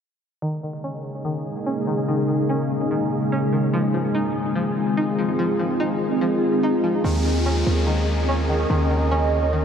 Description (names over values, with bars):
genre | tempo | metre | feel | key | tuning
hip hop | 145 BPM | 4/4 | half-time | unclear | A4 = 436 Hz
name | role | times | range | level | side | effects
glassy FM pad | sustained chords | 0.8-9.6 s | Db3 to Eb5 | -21 LUFS | equal | ensemble chorus, built-in reverb, phaser, low-pass filter
string-like resonator pluck | arpeggios | 0.4-9.6 s | Eb3 to Eb4 | -27 LUFS | equal | chorus, phaser, low-pass filter, analog delay
warm 808-style bass | bass | 7.0-9.6 s | Eb2 | -21 LUFS | equal | none
downlifter | sound effects | 7.0-9.6 s | none | -32 LUFS | left 1 dB | none
room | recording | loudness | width
wet huge ambient reverb, RT60 8.4 s | dreamy mix soaked in reverb | -20 LUFS | side -8 dB against mid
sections
0.4-7.0 A section; 7.0-9.6 B section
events
filter sweep 0.4-7.0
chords
0.4 Eb7sus4; 3.7 Fm7; 7.0 Eb7sus4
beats
| 0.42 0.84 1.25 1.67 | 2.08 2.49 2.91 3.32 | 3.73 4.15 4.56 4.98 | 5.39 5.80 6.22 6.63 | 7.04 7.46 7.87 8.29 | 8.70 9.11 9.53